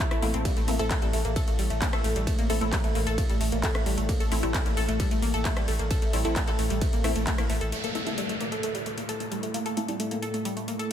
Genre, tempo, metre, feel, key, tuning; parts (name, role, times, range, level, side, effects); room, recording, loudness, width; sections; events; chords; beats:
driving peak-time techno; 132 BPM; 4/4; straight; A phrygian; A4 = 440 Hz
analog pluck; riff; 0.0-10.9 s; G3 to A4; -31 LUFS; left 1 dB; chorus, phaser, sidechain pumping, ping-pong delay
analog drone; drone; 0.0-10.9 s; A2 to A3; -34 LUFS; equal; chorus, sidechain pumping
electronic kick drum; drums; 0.0-7.4 s; -27 LUFS; equal; distortion
techno drum kit; drums; 0.0-10.9 s; handclaps, hi-hat, ride cymbal, rim click; -34 LUFS; equal
saturated sub bass; bass; 0.1-7.7 s; A1; -31 LUFS; equal; tube saturation, sidechain pumping, low-pass filter
filtered dub chord stab; stabs; 0.2-10.0 s; A3 to E4; -34 LUFS; left 2 dB; phaser, sidechain pumping, analog delay
downlifter; sound effects; 7.7-10.9 s; -35 LUFS; right 1 dB
light reverb; -24 LUFS; side -10 dB against mid
0.0-7.7 A section; 7.7-10.9 B section
drop 0.0-7.7; filter sweep on synth stab 7.7-10.9
0.0 Am
0.00 | 0.45 0.91 1.36 1.82 | 2.27 2.73 3.18 3.63 | 4.09 4.54 5.00 5.45 | 5.91 6.36 6.82 7.27 | 7.72 8.18 8.63 9.09 | 9.54 10.00 10.45 10.91